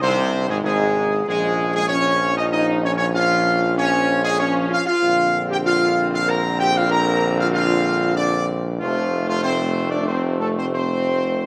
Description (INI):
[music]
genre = classical, ceremonial fanfare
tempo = 96 BPM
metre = 3/4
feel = straight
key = unclear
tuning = A4 = 440 Hz
[part]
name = mellow trumpet section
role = melody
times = 0.0-11.5 s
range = F4 to Bb5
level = -24 LUFS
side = equal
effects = none
[part]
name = clear trombone section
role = sustained chords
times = 0.0-11.5 s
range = Ab2 to Db4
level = -30 LUFS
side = equal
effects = none
[part]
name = mellow French horn section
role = sustained chords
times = 0.0-11.5 s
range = F3 to Bb4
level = -25 LUFS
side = equal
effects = none
[part]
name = clear tuba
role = bass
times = 0.0-11.5 s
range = F1 to C2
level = -25 LUFS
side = equal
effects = none
[sound]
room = moderate scoring stage reverb, RT60 2.0 s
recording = none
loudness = -20 LUFS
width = mono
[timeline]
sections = 0.0-11.5 A section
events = none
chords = 0.0 Ab; 1.3 Db/Bb; 5.0 Bbadd9; 8.8 F